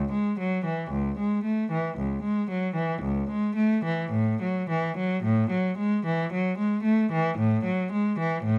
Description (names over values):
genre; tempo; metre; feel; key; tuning
classical, baroque-style suite movement for unaccompanied cello; 56 BPM; 4/4; rubato; unclear; A4 = 440 Hz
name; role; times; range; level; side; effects
rich cello; solo; 0.0-8.6 s; C#2 to A3; -26 LUFS; equal; none
room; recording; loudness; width
light reverb; close, detailed microphones; -27 LUFS; mono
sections
0.0-8.6 A section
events
none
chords
none